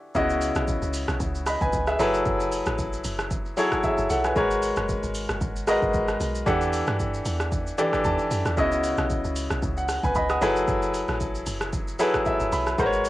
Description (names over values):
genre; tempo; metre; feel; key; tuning
amapiano; 114 BPM; 4/4; swing 55% on 16ths; C# minor; A4 = 440 Hz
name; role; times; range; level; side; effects
clear baby grand piano; accompaniment; 0.0-13.1 s; C#3 to D#6; -24 LUFS; equal; cassette tape
deep log drum bass; bass; 0.2-13.1 s; F#1 to G2; -30 LUFS; equal; none
deep house drum kit; drums; 0.2-13.1 s; hi-hat, kick drum, rim click, shaker; -30 LUFS; equal; cassette tape
room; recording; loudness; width
light reverb; home recording on cassette; -22 LUFS; side -16 dB against mid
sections
0.2-13.1 A section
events
break 0.0; drop 0.2-13.1; grand piano fill 7.8-8.6, 12.0-12.8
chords
0.2 C#m11; 2.0 F#m11; 4.4 G#m11; 6.5 Em11; 8.6 C#m11; 10.4 F#m11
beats
| 0.15 0.68 1.20 1.73 | 2.26 2.78 3.31 3.84 | 4.36 4.89 5.42 5.94 | 6.47 6.99 7.52 8.05 | 8.57 9.10 9.63 10.15 | 10.68 11.20 11.73 12.26 | 12.78